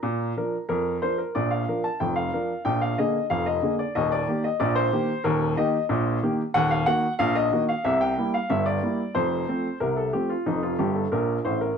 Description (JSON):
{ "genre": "ragtime piano", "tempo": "92 BPM", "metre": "2/4", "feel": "straight", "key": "Bb major", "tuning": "A4 = 438 Hz", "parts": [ { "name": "clear upright piano", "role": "solo", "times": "0.0-11.8 s", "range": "Eb1 to Bb5", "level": "-22 LUFS", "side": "equal", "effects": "none" } ], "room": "moderate club reverb, RT60 0.7 s", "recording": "none", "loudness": "-22 LUFS", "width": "side -6 dB against mid", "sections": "0.0-1.3 A section; 1.3-11.8 B section", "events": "upright piano fill 10.8-11.8", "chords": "0.0 Bb; 2.6 Bb7; 3.9 Eb; 6.5 Ebm; 7.8 C7; 9.1 F" }